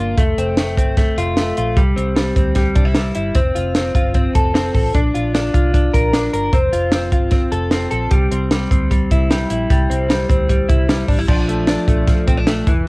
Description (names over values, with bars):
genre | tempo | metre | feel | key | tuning
jangly indie pop | 151 BPM | 4/4 | straight | F major | A4 = 440 Hz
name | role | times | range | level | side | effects
direct-recorded clean electric guitar | arpeggios | 0.0-12.9 s | E3 to Bb4 | -18 LUFS | left 1 dB | lush chorus, cassette tape
vintage muted fingered electric bass | bass | 0.0-12.8 s | F1 to D2 | -22 LUFS | equal | none
compact cocktail drum kit | drums | 0.2-12.8 s | crash cymbal, hi-hat, kick drum, snare drum | -16 LUFS | equal | cassette tape
room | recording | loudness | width
little or no reverb | home recording on cassette | -14 LUFS | side -24 dB against mid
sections
0.0-11.3 A section; 11.3-12.9 B section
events
none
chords
0.2 F; 1.8 C; 3.4 F; 4.9 Bb; 6.5 F; 8.1 C; 11.3 Bbmaj7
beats
| 0.18 0.57 0.97 1.37 | 1.77 2.16 2.56 2.96 | 3.35 3.75 4.15 4.54 | 4.94 5.34 5.74 6.13 | 6.53 6.92 7.32 7.72 | 8.11 8.51 8.91 9.30 | 9.70 10.10 10.49 10.89 | 11.28 11.68 12.07 12.47 | 12.87